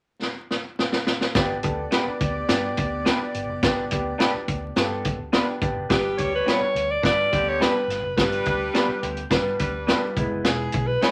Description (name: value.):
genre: uptempo 1960s-style soul.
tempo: 106 BPM.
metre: 4/4.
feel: straight.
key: unclear.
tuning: A4 = 440 Hz.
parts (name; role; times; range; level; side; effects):
vintage drum kit; drums; 0.2-11.1 s; hi-hat, kick drum, snare drum; -26 LUFS; equal; none.
warm saxophone section; second line; 1.4-10.1 s; D3 to D5; -33 LUFS; equal; none.
warm grand piano; accompaniment; 1.4-11.1 s; G3 to D5; -31 LUFS; equal; none.
vintage muted fingered electric bass; bass; 1.4-11.0 s; E1 to G2; -36 LUFS; equal; none.
electric guitar through a small old amp; stabs; 1.9-11.1 s; B3 to B4; -30 LUFS; equal; none.
warm alto saxophone; melody; 5.9-11.1 s; G4 to D5; -26 LUFS; equal; none.
room: wet small room reverb, RT60 0.5 s.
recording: vinyl crackle.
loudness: -24 LUFS.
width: mono.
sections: 0.0-1.4 A section; 1.4-5.9 B section; 5.9-11.1 C section.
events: drum fill 0.2-1.4.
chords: 0.0 N.C.; 1.4 G; 10.2 E.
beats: 0.22 0.79 | 1.36 1.93 2.49 3.06 | 3.63 4.20 4.76 5.33 | 5.90 6.47 7.04 7.61 | 8.18 8.74 9.31 9.88 | 10.45 11.02.